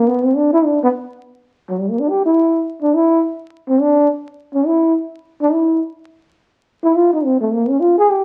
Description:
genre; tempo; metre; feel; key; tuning
jazz; 209 BPM; 4/4; swing 62% on 8ths; unclear; A4 = 440 Hz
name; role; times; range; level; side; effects
breathy trombone; solo; 0.0-8.2 s; F#3 to Ab4; -16 LUFS; equal; none
room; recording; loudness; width
wet large studio reverb, RT60 0.9 s; very old 78 rpm record, vinyl crackle; -16 LUFS; mono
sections
0.0-6.9 A section; 6.9-8.2 A section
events
trombone solo 0.0-8.2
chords
none

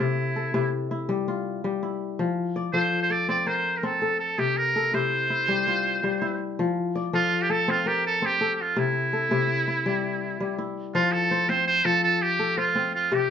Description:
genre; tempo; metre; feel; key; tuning
west african traditional; 110 BPM (dotted quarters); 12/8; straight; F major; A4 = 440 Hz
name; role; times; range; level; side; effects
trumpet with metal mute; melody; 0.0-13.3 s; E4 to D5; -24 LUFS; right 3 dB; none
kora; arpeggios; 0.0-13.3 s; C3 to D5; -26 LUFS; left 4 dB; none
room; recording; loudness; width
wet studio reverb, RT60 0.6 s; heard from further back in the room, nothing above 7.8 kHz; -22 LUFS; side -8 dB against mid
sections
0.0-10.9 A section; 10.9-13.3 B section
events
none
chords
0.0 C; 2.2 F; 4.4 C; 6.6 F; 8.8 C; 10.9 F

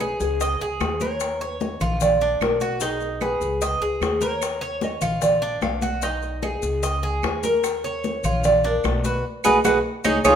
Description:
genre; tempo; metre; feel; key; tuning
latin, Cuban son and guajira; 149 BPM; 4/4; straight; Eb minor; A4 = 440 Hz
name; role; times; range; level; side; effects
nylon-string guitar; melody; 0.0-10.4 s; Eb4 to F5; -24 LUFS; right 1 dB; none
Cuban tres; arpeggios; 0.0-10.4 s; D4 to Eb5; -24 LUFS; right 1 dB; none
upright bass; bass; 0.0-10.4 s; Bb1 to Eb2; -29 LUFS; equal; none
bongos; percussion; 0.0-10.3 s; none; -32 LUFS; left 6 dB; none
claves; percussion; 0.0-10.3 s; none; -33 LUFS; right 7 dB; none
congas; percussion; 0.0-10.3 s; none; -30 LUFS; left 3 dB; none
maracas; percussion; 0.0-10.3 s; none; -36 LUFS; left 9 dB; none
growling trumpet; second line; 10.2-10.4 s; F4; -24 LUFS; left 8 dB; none
room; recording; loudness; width
moderate large studio reverb, RT60 1.3 s; minimal, uncompressed stereo recording; -20 LUFS; side -8 dB against mid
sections
0.0-10.4 A section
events
band accent 9.2-10.4; drum fill 10.1-10.4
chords
0.4 Dbsus2; 1.2 Eb5; 2.0 Bb; 2.8 B6; 3.6 Dbsus2; 4.4 Eb5; 5.2 Bb; 6.0 B6; 6.8 Dbsus2; 7.6 Eb5; 8.4 Bb; 9.2 B6

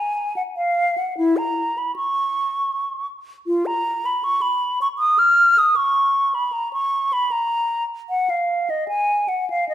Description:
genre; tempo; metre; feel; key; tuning
classical, baroque-style fantasia for unaccompanied flute; 77 BPM; 3/4; rubato; unclear; A4 = 439 Hz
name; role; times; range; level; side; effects
hollow concert flute; solo; 0.0-9.7 s; E4 to E#6; -18 LUFS; equal; none
room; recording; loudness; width
moderate recital hall reverb, RT60 1.6 s; none; -18 LUFS; side -12 dB against mid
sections
0.0-9.7 A section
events
none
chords
none

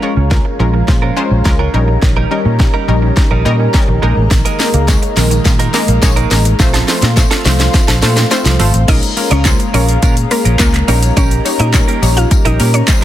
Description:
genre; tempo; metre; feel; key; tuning
dance-pop; 105 BPM; 4/4; straight; Bb minor; A4 = 440 Hz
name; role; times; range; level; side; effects
analog pluck; accompaniment; 0.0-13.0 s; G3 to Db5; -18 LUFS; left 2 dB; chorus, sidechain pumping
airy breathy pad; sustained chords; 0.0-13.0 s; G4 to C6; -22 LUFS; left 2 dB; chorus, sidechain pumping
direct-recorded clean electric guitar; riff; 0.0-13.0 s; G3 to Bb4; -22 LUFS; right 7 dB; analog chorus
analog pluck; arpeggios; 0.2-8.6 s; Eb3 to Db4; -24 LUFS; right 8 dB; chorus, sidechain pumping, digital delay
vintage muted fingered electric bass; bass; 0.2-12.8 s; Ab1 to Bb2; -13 LUFS; equal; sidechain pumping
house drum kit; drums; 0.3-13.0 s; crash cymbal, handclaps, hi-hat, kick drum, shaker, snare drum; -13 LUFS; equal; soft clipping on snare
tambourine; percussion; 4.3-13.0 s; none; -27 LUFS; left 9 dB; none
mallet-like synth pluck; melody; 8.9-12.9 s; Bb3 to F5; -20 LUFS; equal; chorus, digital delay
room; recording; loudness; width
light reverb; dense, heavily limited modern master; -9 LUFS; side -12 dB against mid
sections
0.0-8.9 A section; 8.9-13.0 B section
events
build-up 0.0-8.9; drum fill 0.0-8.9; drop 8.9-13.0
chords
0.0 Bbm7; 1.7 Eb7/Bb; 4.0 Absus2; 6.6 F/Bb; 8.9 Bbm7; 10.9 Eb7/Bb

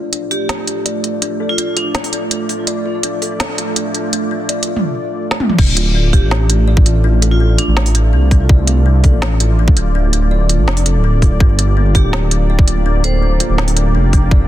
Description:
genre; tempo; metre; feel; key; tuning
half-time drum and bass; 165 BPM; 4/4; half-time; D minor; A4 = 440 Hz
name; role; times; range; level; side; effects
dark analog pad; sustained chords; 0.0-14.5 s; A3 to D5; -23 LUFS; right 3 dB; chorus, vintage 12-bit sampler grit, sidechain pumping
kalimba; arpeggios; 0.0-14.5 s; D4 to D5; -23 LUFS; left 5 dB; vintage 12-bit sampler grit, low-pass filter, tape echo
organic electronic drum kit; drums; 0.1-14.2 s; crash cymbal, hi-hat, snare drum, toms; -19 LUFS; right 1 dB; soft clipping on snare
vibraphone with hard mallets; melody; 0.3-2.0, 6.1-7.9, 12.0-13.5 s; D4 to C5; -24 LUFS; right 1 dB; dub echo
dark detuned saw bass; bass; 5.6-14.5 s; D1 to C2; -13 LUFS; equal; none
electronic kick drum; drums; 5.6-14.4 s; none; -10 LUFS; equal; none
room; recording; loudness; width
little or no reverb; dense, heavily limited modern master; -12 LUFS; side -13 dB against mid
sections
0.0-5.6 A section; 5.6-14.5 B section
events
build-up 0.0-5.6; filter sweep on kalimba 0.0-5.6; drum fill 5.3; drop 5.6-14.5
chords
0.0 Dm; 11.4 Gm

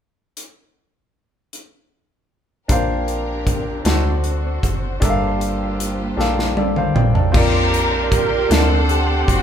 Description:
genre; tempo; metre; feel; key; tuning
slow gospel; 52 BPM (dotted quarters); 6/8; straight; Bb major; A4 = 440 Hz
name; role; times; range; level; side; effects
modern studio drum kit; drums; 0.4-9.4 s; crash cymbal, hi-hat, kick drum, snare drum, toms; -19 LUFS; equal; none
clear baby grand piano; accompaniment; 2.7-9.4 s; G2 to A5; -22 LUFS; left 1 dB; none
warm studio string section; sustained chords; 2.7-7.3 s; Bb3 to C5; -30 LUFS; equal; none
metallic FM bass; bass; 2.7-9.4 s; F#1 to D2; -22 LUFS; equal; none
warm studio string section; melody; 7.3-9.4 s; C4 to F#5; -21 LUFS; left 3 dB; none
mellow alto saxophone; melody; 7.4-9.4 s; G4 to Bb4; -22 LUFS; right 7 dB; none
tonewheel organ; sustained chords; 7.4-9.4 s; Bb4 to C6; -27 LUFS; right 1 dB; fast rotary speaker, chorus vibrato
room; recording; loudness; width
moderate large studio reverb, RT60 1.2 s; band playing live in one room; -16 LUFS; side -9 dB against mid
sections
0.4-2.7 A section; 2.7-7.3 B section; 7.3-9.4 C section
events
drum fill 6.2-7.3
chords
0.4 N.C.; 2.7 Bb69; 3.9 D7; 5.0 Gm9; 7.3 Bb69; 8.5 D7

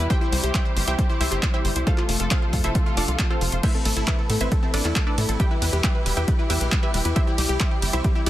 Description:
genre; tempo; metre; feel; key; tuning
uplifting trance; 136 BPM; 4/4; straight; A minor; A4 = 439 Hz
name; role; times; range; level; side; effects
wide unison pluck; melody; 0.0-8.3 s; C4 to G5; -28 LUFS; right 1 dB; sidechain pumping, dub echo
rich symphonic string section; sustained chords; 0.0-8.3 s; B2 to A4; -32 LUFS; equal; sidechain pumping
wide unison pluck; arpeggios; 0.0-8.3 s; G3 to A5; -31 LUFS; left 4 dB; cassette tape, sidechain pumping, tape echo
tight sequencer bass; bass; 0.0-8.3 s; E1 to A2; -25 LUFS; equal; sidechain pumping
electronic kick drum; drums; 0.1-8.1 s; none; -22 LUFS; equal; overdrive
punchy analog drum machine; drums; 0.1-8.3 s; crash cymbal, handclaps, hi-hat, ride cymbal; -28 LUFS; equal; overdrive, sidechain pumping on hats, sidechain pumping on cymbals
room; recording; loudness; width
little or no reverb; dense, heavily limited modern master; -20 LUFS; side -14 dB against mid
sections
0.0-8.3 A section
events
none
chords
0.1 C; 1.9 F; 3.6 Amadd9; 5.4 Em; 7.2 C

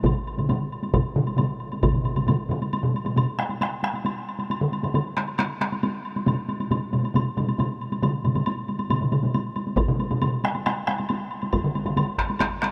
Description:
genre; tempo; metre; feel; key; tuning
japanese traditional, taiko drum ensemble; 136 BPM; 4/4; straight; none; none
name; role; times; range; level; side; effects
solo taiko drums; percussion; 0.0-12.7 s; none; -31 LUFS; equal; none
taiko ensemble; percussion; 0.0-1.9, 9.8-12.5 s; none; -30 LUFS; equal; none
taiko ensemble; percussion; 0.1-11.0 s; none; -29 LUFS; equal; none
taiko ensemble; percussion; 0.1-12.7 s; none; -30 LUFS; equal; none
woodblock; percussion; 0.1-12.7 s; none; -35 LUFS; equal; none
room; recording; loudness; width
moderate huge ambient reverb, RT60 4.6 s; none; -25 LUFS; mono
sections
0.0-2.7 A section; 2.7-12.7 B section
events
none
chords
none

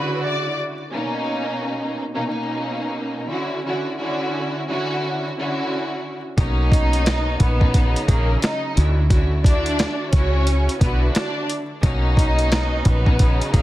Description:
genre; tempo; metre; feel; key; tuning
hip hop, boom-bap hip-hop; 88 BPM; 4/4; swing 63% on 16ths; B major; A4 = 441 Hz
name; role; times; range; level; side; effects
warm studio violin section; melody; 0.0-0.6, 6.7-13.6 s; A#3 to D6; -26 LUFS; equal; high-pass filter, low-pass filter, digital delay
warm studio string section; accompaniment; 0.0-13.6 s; B2 to F#4; -24 LUFS; equal; high-pass filter, low-pass filter
warm saxophone section; stabs; 6.4-13.6 s; F#3 to G#4; -30 LUFS; equal; high-pass filter, low-pass filter, digital delay
deep dub fingered electric bass; bass; 6.4-13.6 s; A#1 to D2; -20 LUFS; equal; none
dusty soul sampler-style drum kit; drums; 6.4-13.6 s; hi-hat, kick drum, snare drum; -18 LUFS; equal; none
room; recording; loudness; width
studio reverb; dense, heavily limited modern master, vinyl crackle; -18 LUFS; side -15 dB against mid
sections
0.0-6.4 A section; 6.4-13.6 B section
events
none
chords
0.0 Dmaj9; 0.9 Bmaj9; 3.3 Dmaj9; 6.4 Bmaj9; 8.8 Dmaj9; 11.8 Bmaj9

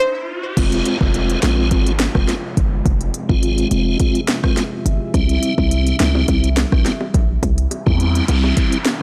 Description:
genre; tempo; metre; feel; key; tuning
dancehall; 105 BPM; 4/4; straight; F harmonic minor; A4 = 440 Hz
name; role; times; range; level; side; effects
riser, downlifter and noise sweep; sound effects; 0.0-9.0 s; none; -32 LUFS; equal; none
tonewheel organ; accompaniment; 0.6-8.8 s; G3 to F4; -23 LUFS; equal; chorus vibrato, fast rotary speaker
deep dark ambient pad; sustained chords; 2.0-9.0 s; C3 to E5; -31 LUFS; equal; chorus, built-in reverb, sidechain pumping
hard-hitting 808-style bass; bass; 0.6-8.5 s; F1 to E2; -20 LUFS; equal; none
afro-pop drum kit; drums; 0.6-9.0 s; crash cymbal, hi-hat, kick drum, rim click, snare drum; -21 LUFS; equal; none
bongos; percussion; 6.0-9.0 s; none; -31 LUFS; equal; none
room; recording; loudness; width
light reverb, digital ambience; blown-out, overdriven recording, overdrive; -17 LUFS; mono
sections
0.6-9.0 A section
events
riser 0.0-0.6; stop 0.0-0.6; noise sweep 7.7-9.0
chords
0.0 N.C.; 0.6 Fm; 5.1 C

